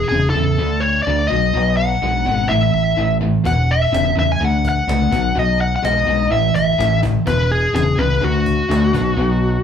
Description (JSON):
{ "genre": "classic rock", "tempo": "126 BPM", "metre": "4/4", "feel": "straight", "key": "E mixolydian", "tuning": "A4 = 438 Hz", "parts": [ { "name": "smooth overdriven lead guitar", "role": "melody", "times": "0.0-9.6 s", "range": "F#4 to G#5", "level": "-18 LUFS", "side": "left 2 dB", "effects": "none" }, { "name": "distorted electric guitar", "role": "riff", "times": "0.0-9.6 s", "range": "E2 to A3", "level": "-21 LUFS", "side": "left 4 dB", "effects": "distortion" }, { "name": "distorted electric guitar", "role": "riff", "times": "0.0-9.6 s", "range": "E2 to A3", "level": "-22 LUFS", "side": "right 5 dB", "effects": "distortion" }, { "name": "growling fingered electric bass", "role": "bass", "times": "0.0-9.6 s", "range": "E1 to E2", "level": "-21 LUFS", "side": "equal", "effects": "overdrive" }, { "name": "cajon", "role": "drums", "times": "3.5-9.2 s", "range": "none", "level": "-29 LUFS", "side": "left 1 dB", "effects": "none" } ], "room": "wet large studio reverb, RT60 0.9 s", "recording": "band playing live in one room", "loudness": "-14 LUFS", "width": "side -8 dB against mid", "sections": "0.0-9.6 A section", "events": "none", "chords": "0.0 E5; 0.6 D5; 1.3 B; 2.5 A5; 3.5 E5; 4.4 D; 5.1 B; 6.3 A5; 7.3 E5; 8.2 D; 8.9 B5" }